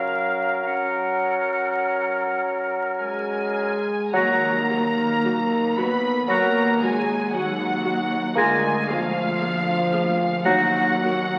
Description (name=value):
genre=classical, slow romantic movement for symphony orchestra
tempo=46-59 BPM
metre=4/4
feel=rubato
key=F# major, Eb minor from 4.1 s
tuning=A4 = 440 Hz
part: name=bright silver concert flute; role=second line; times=0.0-11.0 s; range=E#5 to Bb6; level=-28 LUFS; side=equal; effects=none
part: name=clear oboe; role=second line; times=0.0-10.9 s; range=A#4 to Ab5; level=-30 LUFS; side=equal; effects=none
part: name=warm clarinet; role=second line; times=0.0-10.9 s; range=C#4 to Gb4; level=-36 LUFS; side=equal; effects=none
part: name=warm bassoon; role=accompaniment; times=0.0-10.9 s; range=Gb3 to Bb3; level=-29 LUFS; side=equal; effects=none
part: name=concert harp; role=arpeggios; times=0.0-11.4 s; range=F#2 to Ab5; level=-39 LUFS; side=equal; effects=none
part: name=clear symphonic violin section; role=melody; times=3.0-11.4 s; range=F5 to Cb6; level=-32 LUFS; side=equal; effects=none
part: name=clear symphonic violin section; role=second line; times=3.0-11.4 s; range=F5 to Cb6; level=-32 LUFS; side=equal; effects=none
part: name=mellow French horn section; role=sustained chords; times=3.0-11.4 s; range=F3 to Cb4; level=-28 LUFS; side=equal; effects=none
part: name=dark trumpet section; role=stabs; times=3.0-11.4 s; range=F4 to Cb5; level=-31 LUFS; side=equal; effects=none
part: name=rich symphonic viola section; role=accompaniment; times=4.1-11.1 s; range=Gb3 to Ab4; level=-34 LUFS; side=equal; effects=none
part: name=rich chamber cello section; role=bass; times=4.1-11.4 s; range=D2 to Eb2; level=-33 LUFS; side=equal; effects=none
part: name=clear studio double bass section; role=bass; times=4.2-11.4 s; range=D2 to Eb2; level=-38 LUFS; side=equal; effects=none
room=wet concert hall reverb, RT60 1.9 s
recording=very old 78 rpm record, vinyl crackle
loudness=-22 LUFS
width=mono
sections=0.0-4.1 A section; 4.1-11.4 B section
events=none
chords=0.0 F#; 4.1 Ebm; 8.4 Bb7/D; 10.5 Ebm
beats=0.65 1.82 2.98 | 4.14 5.23 6.28 7.33 | 8.37 9.40 10.46